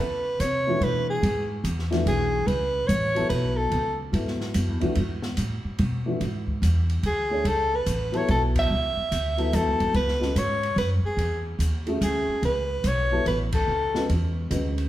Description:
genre	modal jazz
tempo	145 BPM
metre	3/4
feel	swing 65% on 8ths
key	C# phrygian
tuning	A4 = 440 Hz
part	breathy soprano saxophone	melody	0.0-4.0, 7.1-14.1 s	G#4 to E5	-26 LUFS	equal	none
part	upright bass	bass	0.0-14.9 s	A1 to C#3	-25 LUFS	equal	none
part	open jazz drum kit	drums	0.4-14.8 s	hi-hat, kick drum, ride cymbal, snare drum	-36 LUFS	equal	none
part	dark upright piano	accompaniment	0.7-14.9 s	E3 to C#5	-29 LUFS	left 1 dB	none
room	wet large studio reverb, RT60 1.3 s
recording	heard from further back in the room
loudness	-22 LUFS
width	side -14 dB against mid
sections	0.0-14.9 A section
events	band accent 8.5, 13.5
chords	0.0 C#m7; 2.5 A6; 5.0 C#m7 (rootless); 7.5 A6; 9.9 C#m7; 12.4 A6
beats	0.39 0.81 | 1.22 1.64 2.06 | 2.47 2.89 3.30 | 3.72 4.13 4.55 | 4.96 5.38 5.79 | 6.21 6.62 7.04 | 7.45 7.87 8.28 | 8.70 9.11 9.53 | 9.94 10.36 10.77 | 11.19 11.60 12.02 | 12.43 12.85 13.26 | 13.68 14.09 14.51

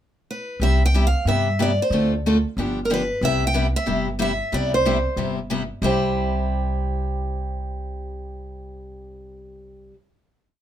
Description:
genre	acoustic string swing (jazz manouche)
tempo	184 BPM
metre	4/4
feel	swing 61% on 8ths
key	C major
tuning	A4 = 440 Hz
part	picked steel-string acoustic guitar	melody	0.3-9.9 s	Bb4 to G5	-24 LUFS	right 1 dB	none
part	picked steel-string acoustic guitar	accompaniment	0.6-9.9 s	C3 to A4	-24 LUFS	left 1 dB	none
part	upright bass	bass	0.6-9.9 s	G1 to G2	-24 LUFS	equal	none
room	moderate small room reverb, RT60 0.5 s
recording	minimal, uncompressed stereo recording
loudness	-19 LUFS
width	side -10 dB against mid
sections	0.0-0.6 pickup bar; 0.6-5.8 A section; 5.8-8.4 final chord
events	none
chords	0.0 N.C.; 0.6 Cmaj7; 1.9 Dm7; 2.6 G7; 3.2 Cmaj7; 5.8 C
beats	0.28 | 0.60 0.93 1.26 1.59 | 1.92 2.24 2.57 2.90 | 3.23 3.55 3.88 4.20 | 4.53 4.86 5.18 5.51 | 5.83 6.16 6.49 6.81 | 7.14 7.46 7.79 8.11

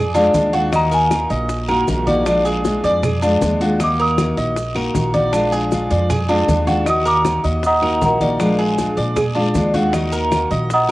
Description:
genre	latin, Cuban son and guajira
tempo	156 BPM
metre	4/4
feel	straight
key	Eb harmonic minor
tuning	A4 = 445 Hz
part	Cuban tres	arpeggios	0.0-10.9 s	D4 to Eb5	-19 LUFS	right 1 dB	cassette tape
part	upright bass	bass	0.0-10.9 s	Bb1 to Bb2	-23 LUFS	equal	none
part	picked steel-string acoustic guitar	accompaniment	0.1-10.9 s	Eb3 to Gb4	-21 LUFS	left 2 dB	cassette tape
part	congas	percussion	0.1-10.9 s	none	-26 LUFS	equal	none
part	maracas	percussion	0.2-10.9 s	none	-38 LUFS	right 4 dB	none
part	bongos	percussion	0.3-10.9 s	none	-26 LUFS	left 5 dB	none
part	guiro	percussion	0.3-10.9 s	none	-35 LUFS	left 6 dB	none
part	claves	percussion	0.7-10.5 s	none	-36 LUFS	right 2 dB	none
part	celesta	melody	0.8-1.1, 3.8-4.2, 6.9-10.9 s	Bb4 to Eb6	-18 LUFS	equal	none
room	moderate spring reverb, RT60 2.6 s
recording	home recording on cassette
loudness	-15 LUFS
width	side -18 dB against mid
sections	0.0-10.9 A section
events	celesta solo 0.0-10.9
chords	0.0 Bb7 (rootless); 0.7 Ebm; 2.3 Bb7; 3.8 Ebm; 5.3 Bb7; 6.9 Ebm; 8.4 Bb7; 9.9 Ebm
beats	0.34 | 0.73 1.11 1.50 1.88 | 2.26 2.65 3.03 3.42 | 3.80 4.18 4.57 4.95 | 5.33 5.72 6.10 6.49 | 6.87 7.25 7.64 8.02 | 8.40 8.79 9.17 9.55 | 9.94 10.32 10.70

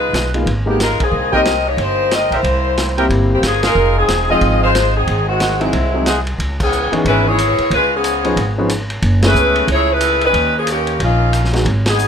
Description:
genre	jazz, big band swing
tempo	182 BPM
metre	4/4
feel	swing 62% on 8ths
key	C# minor from 6.4 s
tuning	A4 = 440 Hz
part	warm saxophone section	melody	0.0-12.1 s	Eb3 to Eb5	-15 LUFS	left 1 dB	none
part	upright bass	bass	0.0-12.1 s	E1 to D#2	-18 LUFS	equal	none
part	vintage drum kit	drums	0.1-12.1 s	crash cymbal, hi-hat, kick drum, ride cymbal, snare drum	-23 LUFS	equal	none
part	clear concert grand piano	accompaniment	0.3-11.6 s	E3 to G5	-19 LUFS	left 1 dB	none
part	warm trumpet section	stabs	1.3-6.2 s	Ab4 to G5	-22 LUFS	right 2 dB	none
room	little or no reverb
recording	none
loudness	-13 LUFS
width	side -7 dB against mid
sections	0.0-6.4 A section; 6.4-12.1 B section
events	band accent 1.0, 3.6, 6.6, 9.2, 11.8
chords	0.0 Db13 (rootless); 1.1 Cm7; 2.4 C7; 3.8 Fm7; 5.1 Ab7; 6.4 C#m7; 7.7 C#7; 9.0 F#m11; 10.3 D#7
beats	0.14 0.47 0.80 | 1.13 1.46 1.79 2.12 | 2.44 2.77 3.10 3.43 | 3.76 4.09 4.42 4.75 | 5.08 5.41 5.74 6.07 | 6.39 6.72 7.05 7.38 | 7.71 8.04 8.37 8.70 | 9.03 9.36 9.69 10.01 | 10.34 10.67 11.00 11.33 | 11.66 11.99

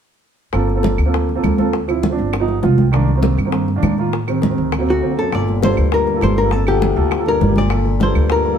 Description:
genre	Afro-Cuban jazz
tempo	201 BPM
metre	4/4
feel	straight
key	G minor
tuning	A4 = 440 Hz
part	warm grand piano	accompaniment	0.5-8.6 s	Eb3 to G5	-20 LUFS	right 4 dB	none
part	upright bass	bass	0.5-8.6 s	G1 to A2	-18 LUFS	equal	none
part	bongos	percussion	0.5-8.6 s	none	-28 LUFS	left 7 dB	none
part	claves	percussion	0.5-8.3 s	none	-34 LUFS	right 6 dB	none
part	congas	percussion	0.5-8.6 s	none	-21 LUFS	equal	none
part	archtop guitar, miked and amplified	melody	4.9-8.6 s	F#4 to D5	-19 LUFS	left 3 dB	none
part	breathy baritone saxophone	second line	4.9-8.6 s	D2 to Bb2	-22 LUFS	left 4 dB	none
room	moderate studio reverb, RT60 0.8 s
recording	heard from further back in the room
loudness	-14 LUFS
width	side -8 dB against mid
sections	0.5-5.3 A section; 5.3-8.6 B section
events	grand piano fill 2.3-2.9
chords	0.5 Gm11; 1.7 Dm9; 2.3 Gaug7; 2.9 Cm9; 4.1 Am7b5; 4.7 D7b13; 5.3 Gm7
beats	| 0.54 0.84 1.14 1.44 | 1.74 2.03 2.33 2.63 | 2.93 3.23 3.53 3.83 | 4.13 4.43 4.72 5.02 | 5.32 5.62 5.92 6.22 | 6.52 6.82 7.12 7.41 | 7.71 8.01 8.31

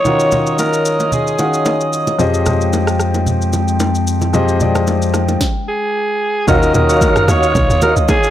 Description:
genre	amapiano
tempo	112 BPM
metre	4/4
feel	swing 55% on 16ths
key	unclear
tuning	A4 = 442 Hz
part	growling alto saxophone	melody	0.0-1.9, 5.7-8.3 s	Ab4 to Db5	-17 LUFS	right 1 dB	analog delay
part	warm concert grand piano	accompaniment	0.0-8.3 s	Eb3 to Gb5	-18 LUFS	left 3 dB	none
part	glass harmonica	sustained chords	0.0-8.3 s	Ab3 to Eb6	-20 LUFS	equal	sidechain pumping
part	afro-pop drum kit	drums	0.1-8.3 s	kick drum, rim click, shaker, snare drum, toms	-20 LUFS	equal	none
part	congas and bongos	percussion	0.1-8.2 s	none	-21 LUFS	right 1 dB	none
part	saturated sub bass	bass	2.2-5.4 s	F2	-17 LUFS	equal	none
part	tonewheel organ	stabs	6.5-8.0 s	Gb4 to F5	-20 LUFS	right 1 dB	chorus vibrato, slow rotary speaker, analog delay
part	hollow log drum bass	bass	6.5-8.1 s	Db2 to Eb2	-17 LUFS	equal	none
room	light reverb, studio reverb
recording	dry, gritty hardware recording, transformer saturation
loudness	-12 LUFS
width	side -12 dB against mid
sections	0.0-6.5 A section; 6.5-8.3 B section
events	stop 5.4-6.5; drop 6.5-8.3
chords	0.0 Ebm9; 2.2 Fm9; 6.5 Ebm9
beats	| 0.05 0.59 1.12 1.66 | 2.19 2.73 3.26 3.80 | 4.34 4.87 5.41 5.94 | 6.48 7.01 7.55 8.09

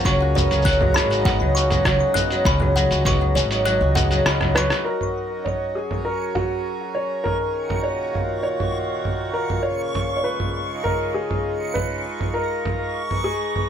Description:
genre	folktronica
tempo	100 BPM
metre	4/4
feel	straight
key	F# major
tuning	A4 = 441 Hz
part	pedal harmonium	sustained chords	0.0-13.7 s	A#2 to A#5	-28 LUFS	right 1 dB	none
part	kora	arpeggios	0.0-6.2 s	E#3 to F#4	-23 LUFS	left 1 dB	ping-pong delay
part	lo-fi sampler-style drum kit	drums	0.0-13.7 s	congas, hi-hat, rim click, shaker	-25 LUFS	right 1 dB	none
part	kalimba	second line	0.1-4.9 s	C#5 to F#6	-26 LUFS	left 2 dB	ping-pong delay
part	upright bass	bass	0.1-4.7 s	G#1 to C#2	-21 LUFS	equal	none
part	electronic kick drum	drums	0.1-3.2 s	none	-23 LUFS	equal	none
part	felt-muted upright piano	melody	4.5-13.7 s	F#4 to C#5	-26 LUFS	left 1 dB	ping-pong delay
part	backwards swelling texture	texture	6.1-13.7 s	C#6	-32 LUFS	right 1 dB	built-in reverb
room	light reverb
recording	none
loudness	-19 LUFS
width	side -9 dB against mid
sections	0.0-4.9 A section; 4.9-13.7 B section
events	kick drops out 3.7-4.9; drum fill 4.4-4.9; band accent 4.7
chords	0.1 C#7sus4; 4.9 F#add9; 7.3 D#m7; 9.7 C#7; 12.1 G#m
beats	| 0.06 0.66 1.26 1.86 | 2.46 3.06 3.66 4.26 | 4.86 5.46 6.06 6.66 | 7.26 7.86 8.46 9.06 | 9.66 10.26 10.86 11.46 | 12.06 12.66 13.26

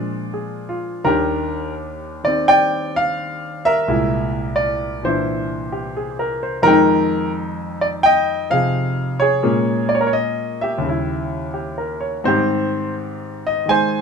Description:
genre	solo jazz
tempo	86 BPM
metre	4/4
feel	swing 69% on 8ths, rubato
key	unclear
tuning	A4 = 441 Hz
part	clear grand piano	solo	0.0-14.0 s	C2 to Ab5	-17 LUFS	equal	none
room	moderate club reverb, RT60 0.6 s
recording	minimal, uncompressed stereo recording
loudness	-17 LUFS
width	side -6 dB against mid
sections	0.0-1.1 A section; 1.1-14.0 B section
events	none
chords	0.0 Bb7; 1.1 Ebmaj7; 3.9 C7b13; 6.7 Fm9; 9.4 Bbm7; 10.8 Eb7b9; 12.3 Abmaj7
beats	0.35 | 1.06 1.77 2.48 3.19 | 3.89 4.58 5.28 5.97 | 6.66 7.35 8.04 8.74 | 9.44 10.14 10.84 11.55 | 12.27 12.98 13.68

